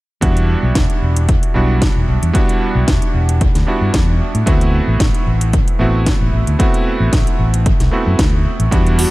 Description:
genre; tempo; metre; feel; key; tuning
nu-disco, nu disco; 113 BPM; 4/4; swing 54% on 16ths; E minor; A4 = 440 Hz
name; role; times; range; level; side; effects
bright electric grand piano; accompaniment; 0.2-9.1 s; G3 to F#4; -20 LUFS; right 2 dB; sidechain pumping, dub echo
fingered electric bass; bass; 0.2-9.0 s; E1 to A2; -15 LUFS; equal; none
electronic kick drum; drums; 0.2-8.8 s; none; -16 LUFS; equal; overdrive
house drum kit; drums; 0.2-9.1 s; hi-hat, snare drum; -24 LUFS; equal; overdrive, dub echo
wide unison lead; melody; 9.0-9.1 s; F#4; -18 LUFS; equal; vintage 12-bit sampler grit
room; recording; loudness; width
little or no reverb; echo-heavy mix; -12 LUFS; side -19 dB against mid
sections
0.2-9.1 A section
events
none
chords
0.2 Em7; 4.5 D13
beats
| 0.23 0.76 1.29 1.82 | 2.35 2.88 3.41 3.94 | 4.47 5.00 5.54 6.07 | 6.60 7.13 7.66 8.19 | 8.72

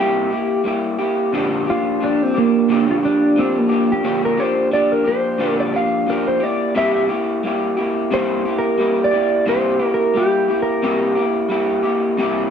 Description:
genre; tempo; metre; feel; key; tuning
indie pop; 89 BPM; 4/4; swing 55% on 16ths; unclear; A4 = 440 Hz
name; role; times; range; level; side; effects
mellow electric guitar; melody; 0.0-11.2 s; Bb3 to F5; -18 LUFS; right 1 dB; lush chorus
electric guitar through a small old amp; accompaniment; 0.0-12.5 s; Bb2 to G4; -18 LUFS; equal; wide subtle chorus, warbly pitch drift
room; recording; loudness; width
wet studio ambience, RT60 0.5 s; dark, warm production; -16 LUFS; side -7 dB against mid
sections
0.0-12.2 A section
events
clean electric guitar solo 0.0-12.2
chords
0.0 C7; 1.3 Bb6; 6.4 C7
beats
0.65 | 1.33 2.01 2.69 3.36 | 4.04 4.72 5.40 6.07 | 6.75 7.43 8.11 8.78 | 9.46 10.14 10.82 11.49 | 12.17

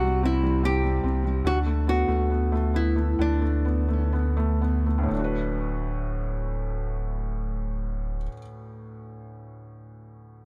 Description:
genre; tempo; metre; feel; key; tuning
pop ballad; 60-76 BPM; 4/4; straight; D major; A4 = 440 Hz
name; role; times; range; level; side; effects
nylon-string guitar; melody; 0.0-4.1 s; D4 to G4; -30 LUFS; equal; delay
felt-muted upright piano; accompaniment; 0.0-10.4 s; D2 to B4; -32 LUFS; equal; none
warm sub bass; bass; 0.0-8.3 s; D1 to D2; -28 LUFS; equal; none
room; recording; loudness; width
little or no reverb; none; -26 LUFS; mono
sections
0.0-5.1 A section; 5.1-9.1 B section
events
slowing down 0.0-5.1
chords
0.0 C5; 1.5 D6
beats
0.64 | 1.46 2.31 3.19 4.13 | 5.12 6.12 7.11 8.09

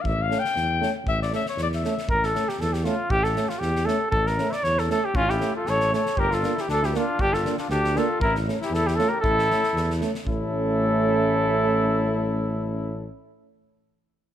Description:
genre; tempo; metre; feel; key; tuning
balkan folk, Balkan brass band; 118 BPM; 2/4; swing 53% on 16ths; A phrygian dominant; A4 = 439 Hz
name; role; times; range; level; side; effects
mellow trumpet; second line; 0.0-2.1, 5.2-13.1 s; C#4 to G5; -29 LUFS; left 6 dB; none
mellow tuba; bass; 0.0-13.1 s; G1 to E2; -28 LUFS; equal; none
loose indie drum kit; percussion; 0.1-10.5 s; kick drum, snare drum; -32 LUFS; equal; none
clear euphonium; accompaniment; 0.3-13.1 s; A3 to Bb3; -30 LUFS; right 5 dB; none
warm euphonium; accompaniment; 0.3-13.1 s; C#4 to D4; -32 LUFS; left 2 dB; none
warm flugelhorn; melody; 2.1-13.1 s; F4 to E5; -24 LUFS; equal; none
room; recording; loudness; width
light reverb; none; -21 LUFS; side -10 dB against mid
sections
0.0-2.1 A section; 2.1-10.3 B section; 10.3-12.3 C section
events
trumpet solo 0.0-2.1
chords
0.1 A; 6.2 Gm; 8.2 A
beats
| 0.06 0.57 | 1.08 1.59 | 2.10 2.60 | 3.11 3.62 | 4.13 4.64 | 5.15 5.66 | 6.17 6.68 | 7.19 7.71 | 8.22 8.73 | 9.24 9.75 | 10.27 10.78 | 11.29 11.81

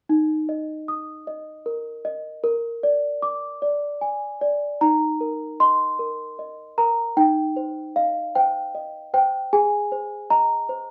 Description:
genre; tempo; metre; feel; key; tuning
classical, lullaby for celesta; 51 BPM (dotted quarters); 6/8; straight; Eb major; A4 = 439 Hz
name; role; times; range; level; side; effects
small celesta; solo; 0.1-10.9 s; Eb4 to Eb6; -23 LUFS; equal; none
room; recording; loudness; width
moderate small room reverb, RT60 0.5 s; heard from further back in the room; -23 LUFS; mono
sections
0.1-4.8 A section; 4.8-10.9 B section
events
none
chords
0.1 Eb5; 2.4 Bb7; 4.8 Eb5; 7.2 Cm/Eb; 9.5 Ab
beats
| 0.10 1.28 | 2.44 3.62 | 4.82 6.00 | 7.18 8.35 | 9.53 10.70

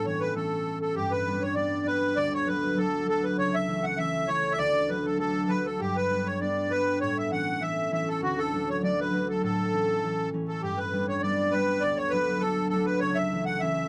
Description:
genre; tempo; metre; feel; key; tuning
celtic folk; 198 BPM; 4/4; swing 54% on 8ths; A mixolydian; A4 = 441 Hz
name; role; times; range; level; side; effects
accordion; melody; 0.0-13.9 s; F#4 to F#5; -30 LUFS; equal; light tremolo tuning
concert harp; accompaniment; 0.0-13.9 s; C#2 to D4; -31 LUFS; equal; none
room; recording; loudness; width
moderate booth ambience, RT60 0.2 s; none; -27 LUFS; mono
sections
1.0-10.6 A section; 10.6-13.9 A section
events
none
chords
0.0 A; 1.0 G; 2.2 D; 3.4 A/C#; 4.6 D; 5.8 G; 7.0 A; 8.2 D; 9.4 A; 10.6 G; 11.8 D; 13.0 A/C#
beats
0.05 0.36 0.66 | 0.96 1.26 1.56 1.87 | 2.17 2.47 2.77 3.08 | 3.38 3.68 3.98 4.29 | 4.59 4.89 5.20 5.50 | 5.80 6.11 6.41 6.71 | 7.01 7.32 7.62 7.92 | 8.22 8.52 8.82 9.13 | 9.43 9.73 10.03 10.33 | 10.63 10.93 11.23 11.53 | 11.83 12.13 12.43 12.73 | 13.02 13.32 13.62

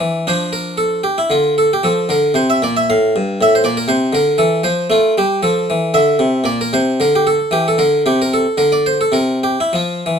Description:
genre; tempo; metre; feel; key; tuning
classical, baroque-style suite movement for harpsichord; 114 BPM; 3/4; rubato; unclear; A4 = 440 Hz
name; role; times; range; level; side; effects
harpsichord; solo; 0.0-10.2 s; G2 to F5; -13 LUFS; equal; none
room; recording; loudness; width
light reverb; close, detailed microphones; -13 LUFS; side -7 dB against mid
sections
0.0-10.2 A section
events
none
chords
0.3 Dm/F; 1.8 F; 3.4 F/A; 4.9 F; 6.5 Bbmaj9#11; 8.0 N.C.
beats
| 0.26 0.79 1.31 | 1.83 2.35 2.86 | 3.37 3.87 4.38 | 4.89 5.41 5.94 | 6.46 6.99 7.52 | 8.05 8.59 9.14 | 9.73

